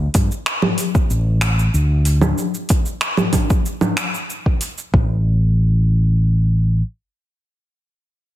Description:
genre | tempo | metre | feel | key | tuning
sunset chillout | 94 BPM | 4/4 | straight | unclear | A4 = 438 Hz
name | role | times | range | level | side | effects
fretless electric bass | bass | 0.0-6.8 s | A1 to G2 | -15 LUFS | equal | tube saturation
deep house drum kit | drums | 0.1-4.9 s | cabasa, congas, finger snaps, hi-hat | -20 LUFS | right 1 dB | overdrive
electronic kick drum | drums | 0.1-5.1 s | none | -17 LUFS | equal | overdrive
room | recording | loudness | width
little or no reverb | dense, heavily limited modern master | -15 LUFS | side -14 dB against mid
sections
0.0-4.9 A section; 4.9-7.5 B section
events
none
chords
none

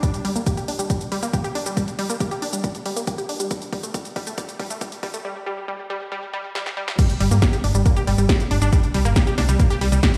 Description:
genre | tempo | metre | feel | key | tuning
uplifting trance | 138 BPM | 4/4 | straight | unclear | A4 = 441 Hz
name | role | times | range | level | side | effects
unison pluck | arpeggios | 0.0-10.1 s | G3 to G4 | -28 LUFS | equal | sidechain pumping, digital delay
electronic kick drum | drums | 0.0-10.1 s | none | -22 LUFS | equal | overdrive, studio reverb
punchy analog drum machine | drums | 0.0-10.2 s | crash cymbal, hi-hat, shaker, snare drum | -31 LUFS | equal | overdrive, high-pass filter on hats, studio reverb, high-pass filter on perc, high-pass filter on snare, high-pass filter on cymbals
solid FM bass | bass | 7.2-10.0 s | G1 to G2 | -21 LUFS | equal | tube saturation, sidechain pumping
room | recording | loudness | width
light reverb, digital ambience | played on a big sound system in a bare room, stone room reverb, high-pass filter | -22 LUFS | mono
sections
0.0-7.0 A section; 7.0-10.2 B section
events
build-up 0.0-7.0; filter sweep on synth arpeggio sound 0.0-7.0; filter sweep 0.0-7.0; drum fill 0.0-5.2, 6.6-7.0; drop 7.0-10.2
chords
0.0 N.C.; 8.7 C5

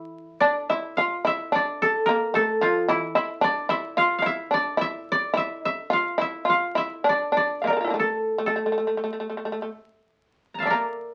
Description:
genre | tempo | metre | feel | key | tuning
japanese traditional, Japanese chamber music | 63-74 BPM | 4/4 | rubato | unclear | A4 = 440 Hz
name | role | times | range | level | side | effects
koto | melody | 0.0-11.1 s | E4 to Bb5 | -26 LUFS | equal | none
shamisen | second line | 0.0-11.1 s | E3 to F5 | -28 LUFS | equal | none
room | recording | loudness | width
moderate studio reverb, RT60 0.5 s | very old 78 rpm record, vinyl crackle | -24 LUFS | mono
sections
0.0-10.7 A section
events
none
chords
none

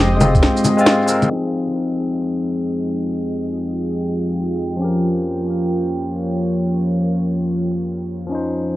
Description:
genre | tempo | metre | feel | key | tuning
future garage | free time | none | none | F minor | A4 = 441 Hz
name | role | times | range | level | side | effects
barky tine electric piano | accompaniment | 0.0-8.8 s | F3 to C5 | -21 LUFS | left 2 dB | sidechain pumping, tape echo
dark analog pad | sustained chords | 0.0-8.8 s | F3 to C6 | -21 LUFS | right 1 dB | chorus, sidechain pumping
electronic bongos, cabasa, shaker and snare drum | drums | 0.2-1.3 s | none | -17 LUFS | equal | dub echo
room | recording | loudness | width
moderate spring reverb, RT60 1.8 s | echo-heavy mix, vinyl crackle, low-pass filter | -17 LUFS | side -16 dB against mid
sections
0.0-1.3 A section; 1.3-8.8 B section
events
filter sweep on analog synth pad 1.3-8.8; filter sweep 1.3-8.8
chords
0.0 Abmaj7/F; 1.3 Fm7; 4.8 Bbm6/F

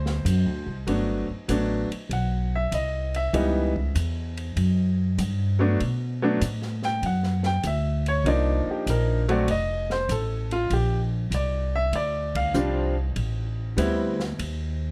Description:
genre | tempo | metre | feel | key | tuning
jazz piano trio | 98 BPM | 4/4 | swing 68% on 8ths | G major | A4 = 440 Hz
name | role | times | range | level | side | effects
bright baby grand piano | melody | 0.0-14.2 s | E3 to G5 | -28 LUFS | equal | plate reverb
upright bass | bass | 0.0-14.9 s | F1 to B2 | -28 LUFS | equal | none
open jazz drum kit | drums | 0.1-14.6 s | hi-hat, kick drum, ride cymbal, snare drum | -40 LUFS | equal | none
room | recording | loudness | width
light reverb | dark, warm production | -25 LUFS | mono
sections
0.9-14.9 A section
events
band accent 12.2-12.5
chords
0.0 D7; 0.9 Gmaj9; 3.3 C#m7b5; 4.6 Gmaj7(no3)/F#; 5.8 Bm7; 8.3 Cm11; 9.5 F; 10.7 Bb69; 13.2 Am7; 14.4 N.C.

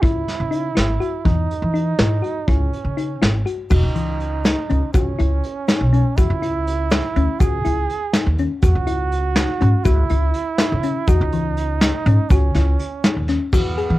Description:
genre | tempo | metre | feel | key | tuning
progressive instrumental, band music in an uneven meter | 244 BPM (eighths) | 5/8 | straight | C# minor | A4 = 440 Hz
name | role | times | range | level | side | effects
breathy flugelhorn | second line | 0.0-14.0 s | B3 to G#4 | -25 LUFS | right 6 dB | cassette tape
thumb-piano-like synth pluck | arpeggios | 0.0-14.0 s | E3 to G#4 | -24 LUFS | left 6 dB | chorus, cassette tape
upright bass | bass | 0.0-14.0 s | E1 to E3 | -19 LUFS | equal | none
vintage brush drum kit | drums | 0.0-13.9 s | crash cymbal, hi-hat, kick drum, snare drum | -20 LUFS | equal | cassette tape
egg shaker | percussion | 3.7-13.8 s | none | -41 LUFS | left 8 dB | none
room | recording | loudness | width
light reverb | home recording on cassette | -16 LUFS | side -16 dB against mid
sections
0.0-3.7 A section; 3.7-13.5 B section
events
none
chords
0.0 C#m; 1.3 E; 2.5 C#m; 3.7 N.C.; 4.9 C#m7; 6.2 N.C.; 7.4 C#m; 8.6 Esus2; 9.9 C#m; 11.1 N.C.; 12.3 C#m

